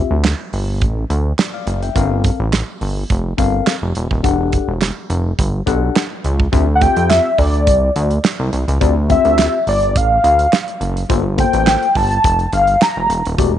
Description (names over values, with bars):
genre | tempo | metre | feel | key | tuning
early-eighties boogie funk | 105 BPM | 4/4 | straight | D minor | A4 = 440 Hz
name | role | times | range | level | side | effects
tine electric piano | accompaniment | 0.0-13.5 s | A3 to G5 | -21 LUFS | left 12 dB | phaser
chorused synth bass | bass | 0.0-13.6 s | Eb1 to F2 | -17 LUFS | equal | none
damped 70s drum kit | drums | 0.2-13.5 s | handclaps, hi-hat, kick drum, snare drum | -19 LUFS | right 2 dB | none
warm velvety synth lead | melody | 6.8-13.3 s | D5 to Bb5 | -15 LUFS | left 1 dB | chorus, slapback echo
room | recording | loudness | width
light reverb, small room ambience | 1960s-style stereo, nothing above 10.7 kHz | -13 LUFS | side -11 dB against mid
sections
0.0-6.5 A section; 6.5-13.6 B section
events
none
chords
0.0 Dmadd9; 2.0 Gm11; 4.2 Em11; 6.5 Dm11; 11.1 Gm11